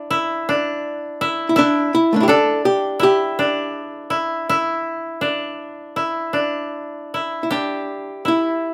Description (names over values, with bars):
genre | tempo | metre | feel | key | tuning
japanese traditional, Japanese chamber music | 76-85 BPM | 4/4 | rubato | unclear | A4 = 440 Hz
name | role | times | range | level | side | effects
koto | second line | 0.0-8.7 s | D4 to G4 | -23 LUFS | equal | none
archtop guitar, miked and amplified | melody | 1.5-8.7 s | A3 to A4 | -20 LUFS | equal | none
room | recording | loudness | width
light reverb | close, detailed microphones | -20 LUFS | mono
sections
0.0-7.5 A section; 7.5-8.7 B section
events
none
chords
none